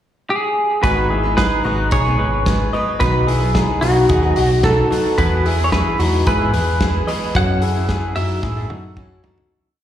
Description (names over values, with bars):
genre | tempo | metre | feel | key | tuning
jangly indie pop | 111 BPM | 4/4 | straight | unclear | A4 = 441 Hz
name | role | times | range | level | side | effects
semi-hollow electric guitar | melody | 0.3-9.2 s | F#4 to F#5 | -20 LUFS | right 1 dB | lush chorus, slapback echo, ping-pong delay
picked steel-string acoustic guitar | accompaniment | 0.8-9.5 s | G#2 to B4 | -26 LUFS | right 3 dB | slapback echo
electric guitar through a small old amp | arpeggios | 0.8-9.5 s | B3 to D#5 | -21 LUFS | left 2 dB | analog chorus, slapback echo
hollow-body short-scale fingered electric bass | bass | 0.8-9.2 s | G#1 to A2 | -19 LUFS | equal | none
loose indie drum kit | drums | 0.8-9.5 s | hi-hat, kick drum, snare drum, toms | -22 LUFS | equal | none
room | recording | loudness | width
light reverb | live gig heard through the venue's PA, recital hall reverb | -15 LUFS | side -11 dB against mid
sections
0.0-0.8 pickup bar; 0.8-9.5 verse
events
fade-out 7.3-9.5; drum fill 8.4-9.5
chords
0.0 N.C.; 0.8 G#m; 3.0 B; 5.2 E; 7.3 F#m7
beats
0.29 | 0.84 1.38 1.92 2.46 | 3.01 3.55 4.09 4.63 | 5.18 5.72 6.26 6.80 | 7.34 7.89 8.43 8.97